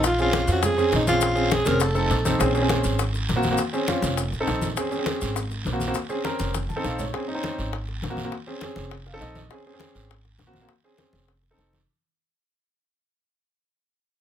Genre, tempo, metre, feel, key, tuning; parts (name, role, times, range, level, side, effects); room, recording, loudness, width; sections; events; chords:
Afro-Cuban jazz; 203 BPM; 4/4; straight; Bb minor; A4 = 441 Hz
breathy alto saxophone; melody; 0.0-2.3 s; Eb4 to Bb4; -23 LUFS; equal
warm grand piano; accompaniment; 0.0-11.8 s; Bb3 to A5; -26 LUFS; right 1 dB
upright bass; bass; 0.0-11.8 s; F1 to F2; -27 LUFS; equal
bongos; percussion; 0.0-11.9 s; -32 LUFS; left 7 dB
congas; percussion; 0.0-11.9 s; -32 LUFS; left 2 dB
guiro; percussion; 0.0-11.9 s; -35 LUFS; right 5 dB
maracas; percussion; 0.0-7.1 s; -36 LUFS; left 6 dB
little or no reverb; close, detailed microphones; -22 LUFS; side -10 dB against mid
0.0-2.4 A section; 2.4-11.9 B section
fade-out 2.4-11.9; drum fill 6.5-7.1; grand piano fill 6.5-7.1, 8.9-9.5
0.0 Bbm9; 1.8 F7; 2.4 Bbm7; 3.0 Ab9; 3.6 Dbmaj7; 4.2 F7; 4.8 Abadd11; 5.4 Ab9; 6.0 Bbm7; 6.5 F7; 7.1 Abadd11; 7.7 Ab9; 8.3 Dbmaj7; 8.9 F7; 9.5 Abadd11; 10.1 Ab9; 10.7 Dbmaj7; 11.3 F7